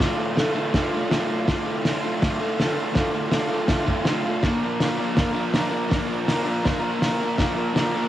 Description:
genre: garage rock duo or trio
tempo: 162 BPM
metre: 4/4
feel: straight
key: D minor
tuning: A4 = 442 Hz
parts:
  - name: combo organ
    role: sustained chords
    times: 0.0-8.1 s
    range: F4 to A5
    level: -34 LUFS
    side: equal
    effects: cassette tape
  - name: crunchy overdriven guitar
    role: riff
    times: 0.0-8.1 s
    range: D2 to Bb4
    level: -23 LUFS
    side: equal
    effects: cassette tape
  - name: cloth-damped thuddy drum kit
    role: drums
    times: 0.0-7.8 s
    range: hi-hat, kick drum, snare drum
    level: -24 LUFS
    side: equal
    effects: cassette tape
room: light reverb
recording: home recording on cassette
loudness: -20 LUFS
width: side -12 dB against mid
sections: 0.0-8.1 A section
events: transistor combo organ fill 0.4-1.5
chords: 0.0 Dm; 4.4 Bb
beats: | 0.00 0.37 0.74 1.11 | 1.48 1.85 2.22 2.59 | 2.96 3.33 3.69 4.06 | 4.43 4.80 5.17 5.54 | 5.91 6.28 6.65 7.02 | 7.38 7.75

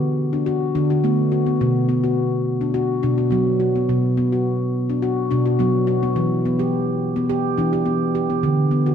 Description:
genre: world meditative, meditative tuned percussion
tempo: 106 BPM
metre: 4/4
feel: straight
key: B minor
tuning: A4 = 442 Hz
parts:
  - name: handpan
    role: solo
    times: 0.0-8.9 s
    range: B2 to G4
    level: -18 LUFS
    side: equal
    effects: none
room: wet church reverb, RT60 2.6 s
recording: none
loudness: -18 LUFS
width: side -8 dB against mid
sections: 0.0-8.9 A section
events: none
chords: 0.0 D; 1.6 Bm; 6.2 Em; 8.4 D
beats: 0.47 1.04 | 1.61 2.18 2.75 3.32 | 3.89 4.46 5.03 5.59 | 6.16 6.73 7.30 7.86 | 8.43

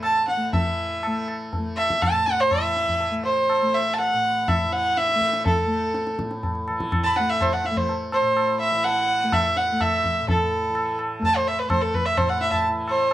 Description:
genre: indian classical, Hindustani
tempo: 124 BPM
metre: 5/4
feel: straight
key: unclear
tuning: A4 = 443 Hz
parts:
  - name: warm violin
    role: melody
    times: 0.0-13.1 s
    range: A4 to B5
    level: -21 LUFS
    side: right 1 dB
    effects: plate reverb
  - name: tanpura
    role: drone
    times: 0.0-13.1 s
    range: A2 to A3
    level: -30 LUFS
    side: left 1 dB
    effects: none
  - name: tabla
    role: percussion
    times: 0.0-13.1 s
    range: none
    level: -27 LUFS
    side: equal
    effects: none
room: moderate studio ambience, RT60 0.5 s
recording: vinyl crackle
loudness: -20 LUFS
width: side -13 dB against mid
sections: 0.5-13.1 A section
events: speeding up 0.0-13.1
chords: none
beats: 0.04 | 0.54 1.03 1.53 2.02 2.52 | 3.01 3.50 3.99 4.48 4.97 | 5.46 5.95 6.43 6.92 7.40 | 7.88 8.37 8.85 9.33 9.81 | 10.28 10.76 11.24 11.71 12.19 | 12.66 13.13

